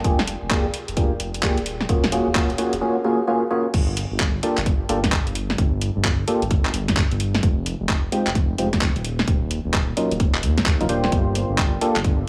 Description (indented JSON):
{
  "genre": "UK garage, two-step garage",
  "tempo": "130 BPM",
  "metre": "4/4",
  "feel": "swing 63% on 16ths",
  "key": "G phrygian",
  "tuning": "A4 = 440 Hz",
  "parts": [
    { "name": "percussive organ stab", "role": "stabs", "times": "0.0-12.0 s", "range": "Gb3 to C5", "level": "-25 LUFS", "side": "equal", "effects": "analog chorus, dub echo" },
    { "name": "dark detuned saw bass", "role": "bass", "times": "0.0-12.2 s", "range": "Eb1 to Eb2", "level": "-27 LUFS", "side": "equal", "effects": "none" },
    { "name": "electronic kick drum", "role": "drums", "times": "0.0-12.2 s", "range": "none", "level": "-24 LUFS", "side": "equal", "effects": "none" },
    { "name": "garage drum kit", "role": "drums", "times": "0.0-12.2 s", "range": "crash cymbal, handclaps, hi-hat, snare drum", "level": "-27 LUFS", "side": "equal", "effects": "none" }
  ],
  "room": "moderate plate reverb, RT60 2.0 s",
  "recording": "small room ambience",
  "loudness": "-21 LUFS",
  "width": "mono",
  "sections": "0.0-3.7 A section; 3.7-12.3 B section",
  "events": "build-up 0.0-3.7; drop 3.7-12.3",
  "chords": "0.0 Fmadd9; 1.7 Ebm9; 3.7 Gm9; 7.4 Fm9; 9.0 Ebm9; 11.1 Gm9"
}